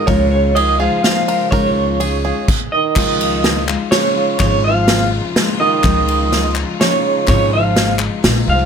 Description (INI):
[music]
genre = indie folk with a building arrangement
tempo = 125 BPM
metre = 3/4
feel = straight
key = Db major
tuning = A4 = 440 Hz
[part]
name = electric guitar through a small old amp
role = melody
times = 0.0-8.7 s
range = Db5 to F5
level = -17 LUFS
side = right 2 dB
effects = tremolo
[part]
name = warm French horn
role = second line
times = 0.0-8.7 s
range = Db3 to F3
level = -23 LUFS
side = right 11 dB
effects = none
[part]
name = fingerpicked steel-string acoustic guitar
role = accompaniment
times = 0.0-1.5 s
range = Ab4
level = -35 LUFS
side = left 2 dB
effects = none
[part]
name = picked steel-string acoustic guitar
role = accompaniment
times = 0.0-8.7 s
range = Db3 to F4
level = -22 LUFS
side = left 7 dB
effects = none
[part]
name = bluegrass banjo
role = arpeggios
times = 0.0-2.7 s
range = Ab4 to Bb4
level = -26 LUFS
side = right 10 dB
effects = none
[part]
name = warm studio string section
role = sustained chords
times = 0.1-8.7 s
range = Db3 to F4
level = -28 LUFS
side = left 3 dB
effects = none
[part]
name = upright bass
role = bass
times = 0.1-8.7 s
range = Ab1 to Db2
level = -19 LUFS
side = equal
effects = none
[part]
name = unplugged drum kit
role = drums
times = 0.1-8.4 s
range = crash cymbal, kick drum, ride cymbal, snare drum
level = -18 LUFS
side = equal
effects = none
[part]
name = group handclap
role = percussion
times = 3.0-8.7 s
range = none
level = -24 LUFS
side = left 8 dB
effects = none
[sound]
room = little or no reverb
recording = none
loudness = -13 LUFS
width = side -7 dB against mid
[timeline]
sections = 0.0-3.0 A section; 3.0-8.7 B section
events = none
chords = 0.0 Dbadd9